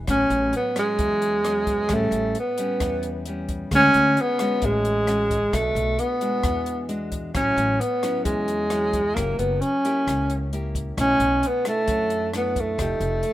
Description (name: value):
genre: bossa nova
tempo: 132 BPM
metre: 4/4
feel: straight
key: A major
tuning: A4 = 439 Hz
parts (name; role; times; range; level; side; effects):
- nylon-string guitar; accompaniment; 0.0-13.3 s; A2 to G4; -31 LUFS; left 1 dB; none
- upright bass; bass; 0.0-13.2 s; F1 to F#2; -29 LUFS; equal; none
- breathy tenor saxophone; melody; 0.1-13.3 s; G#3 to C#4; -21 LUFS; equal; none
- compact cocktail drum kit; drums; 0.1-13.3 s; hi-hat, kick drum, rim click; -31 LUFS; left 1 dB; none
room: light reverb, studio ambience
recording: rough home demo mix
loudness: -20 LUFS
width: side -14 dB against mid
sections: 0.1-13.3 A section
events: none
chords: 0.1 A69; 1.9 A9; 3.7 Dmaj7#11; 5.5 Bm7; 6.4 E9; 7.3 A6; 9.2 F#7b9; 11.0 Bm11; 12.8 F9